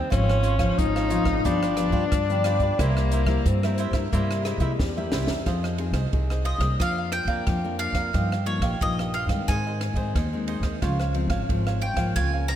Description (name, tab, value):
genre	samba and choro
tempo	90 BPM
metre	4/4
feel	straight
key	F minor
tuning	A4 = 440 Hz
part	breathy tenor saxophone	second line	0.0-5.5 s	G3 to Eb4	-27 LUFS	left 4 dB	ping-pong delay
part	cavaquinho	accompaniment	0.0-12.5 s	D4 to F5	-32 LUFS	right 5 dB	none
part	nylon-string guitar	accompaniment	0.0-12.6 s	G2 to Bb4	-30 LUFS	left 3 dB	none
part	upright bass	bass	0.0-12.6 s	G1 to C3	-26 LUFS	equal	none
part	compact cocktail drum kit	drums	0.1-12.6 s	hi-hat, kick drum, ride cymbal, rim click, snare drum	-29 LUFS	right 1 dB	none
part	bowl-back mandolin	melody	6.5-12.6 s	Db5 to Bb5	-29 LUFS	left 1 dB	ping-pong delay
room	moderate lush hall reverb, RT60 1.8 s, studio reverb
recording	dreamy mix soaked in reverb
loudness	-22 LUFS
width	side -10 dB against mid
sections	0.0-5.5 A section; 5.5-12.6 B section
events	drum fill 4.8-5.5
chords	0.1 Dbmaj7/Ab; 1.5 G7; 2.8 C7; 5.5 Fm7; 6.8 Bb/F; 8.1 Ebadd9; 9.5 Ab; 10.8 Dbmaj7